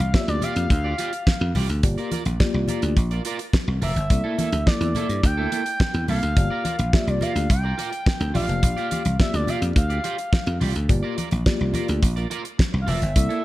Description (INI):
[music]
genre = early-eighties boogie funk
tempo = 106 BPM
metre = 4/4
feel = straight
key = unclear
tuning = A4 = 440 Hz
[part]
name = expressive portamento lead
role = melody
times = 0.0-13.4 s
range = D5 to G5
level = -28 LUFS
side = equal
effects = chorus
[part]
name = electric guitar at the edge of break-up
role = riff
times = 0.0-13.4 s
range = Bb3 to D5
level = -32 LUFS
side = right 5 dB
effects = wide subtle chorus
[part]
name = dry thumbed slap bass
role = bass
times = 0.0-13.3 s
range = F1 to G2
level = -23 LUFS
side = equal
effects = none
[part]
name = congas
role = percussion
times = 0.0-13.0 s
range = none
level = -31 LUFS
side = left 1 dB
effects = none
[part]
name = mellow tine electric piano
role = accompaniment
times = 0.1-13.4 s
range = Bb3 to D5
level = -29 LUFS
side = left 3 dB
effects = medium stereo tremolo
[part]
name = damped 70s drum kit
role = drums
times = 0.1-13.4 s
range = hi-hat, kick drum, snare drum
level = -22 LUFS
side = equal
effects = gated reverb
[sound]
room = small room ambience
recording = none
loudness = -20 LUFS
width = side -16 dB against mid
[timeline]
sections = 0.0-13.4 A section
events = none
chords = 0.0 Bb6; 1.8 Gm7; 4.1 C13 (rootless); 6.4 Gm7; 8.3 Bb6